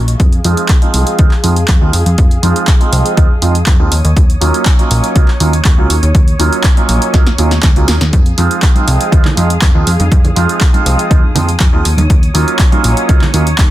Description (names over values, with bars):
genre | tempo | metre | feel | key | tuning
filtered disco house | 121 BPM | 4/4 | straight | unclear | A4 = 440 Hz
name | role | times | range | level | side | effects
clear studio string section | sustained chords | 0.0-13.7 s | Gb3 to Eb6 | -24 LUFS | equal | sidechain pumping, low-pass filter
plucky analog bass | bass | 0.0-13.7 s | Bb1 to F2 | -13 LUFS | equal | sidechain pumping, low-pass filter
punchy analog drum machine | drums | 0.1-13.7 s | handclaps, hi-hat, snare drum | -18 LUFS | equal | sidechain pumping on hats, sidechain pumping on cymbals
electronic kick drum | drums | 0.2-13.7 s | none | -9 LUFS | equal | none
bright baby grand piano | accompaniment | 0.4-13.4 s | F3 to F4 | -17 LUFS | right 3 dB | phaser, sidechain pumping, low-pass filter
tambourine and congas | percussion | 8.1-13.7 s | none | -20 LUFS | right 3 dB | sidechain pumping on perc, low-pass filter on perc
room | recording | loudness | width
little or no reverb | dense, heavily limited modern master | -8 LUFS | side -14 dB against mid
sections
0.0-13.7 A section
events
filter sweep 0.0-13.7; drum fill 7.1-8.1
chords
0.2 Fm7; 3.9 Ebm7; 8.1 Fm7; 11.8 Ebm7